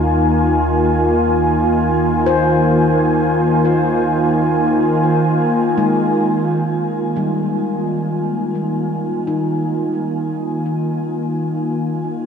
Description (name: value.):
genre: ambient.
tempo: free time.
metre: none.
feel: none.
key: Eb major.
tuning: A4 = 443 Hz.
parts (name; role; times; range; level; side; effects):
warm analog pad; sustained chords; 0.0-12.3 s; Eb3 to Ab5; -16 LUFS; equal; wide subtle chorus, shimmer reverb.
deep rumbling drone; bass; 0.0-6.6 s; Eb2; -25 LUFS; equal; built-in reverb.
analog drone; drone; 0.0-12.3 s; Eb3 to Bb3; -23 LUFS; left 2 dB; chorus.
handpan; arpeggios; 2.3-11.3 s; G3 to C5; -24 LUFS; left 4 dB; shimmer reverb, tape echo.
room: wet huge ambient reverb, RT60 7.7 s.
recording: dreamy mix soaked in reverb.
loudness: -15 LUFS.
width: side -7 dB against mid.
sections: 0.0-6.7 A section; 6.7-12.3 B section.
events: fade-out on synth drone 0.0-6.7.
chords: 0.0 Ebsus4.